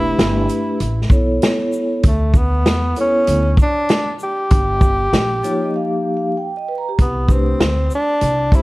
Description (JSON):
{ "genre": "hip hop, jazz-hop", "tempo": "97 BPM", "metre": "4/4", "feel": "swing 65% on 16ths", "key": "unclear", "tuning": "A4 = 440 Hz", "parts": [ { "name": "breathy tenor saxophone", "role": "melody", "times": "0.0-8.6 s", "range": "A3 to G4", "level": "-20 LUFS", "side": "equal", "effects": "analog delay" }, { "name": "vibraphone with soft mallets", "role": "accompaniment", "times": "0.0-8.6 s", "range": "F3 to A#5", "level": "-20 LUFS", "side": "equal", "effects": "none" }, { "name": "upright bass", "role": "bass", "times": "0.0-8.5 s", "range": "E1 to E2", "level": "-20 LUFS", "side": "equal", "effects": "none" }, { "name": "vintage drum kit", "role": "drums", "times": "0.2-8.6 s", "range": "hi-hat, kick drum, shaker, snare drum", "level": "-16 LUFS", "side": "equal", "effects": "none" } ], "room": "studio ambience", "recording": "vinyl crackle", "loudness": "-14 LUFS", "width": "side -20 dB against mid", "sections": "0.0-8.6 A section", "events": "vibraphone fill 5.1-7.0; break 5.7-7.0", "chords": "0.0 Em7; 0.8 A; 2.0 Dsus2; 4.5 Gm7b13; 7.0 Cmaj7sus2" }